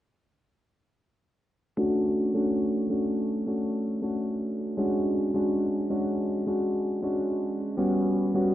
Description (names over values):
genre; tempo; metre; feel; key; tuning
vaporwave; 80 BPM; 4/4; straight; unclear; A4 = 440 Hz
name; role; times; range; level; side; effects
bright electric grand piano; accompaniment; 1.8-8.5 s; G3 to F#4; -25 LUFS; equal; lush chorus, vintage 12-bit sampler grit
room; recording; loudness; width
moderate plate reverb, RT60 2.5 s; dark, warm production, cassette tape, low-pass filter; -25 LUFS; side -13 dB against mid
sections
1.8-8.5 A section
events
none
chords
1.8 Dmaj7/A; 4.8 Dmaj7#11/G#; 7.8 A13 (rootless)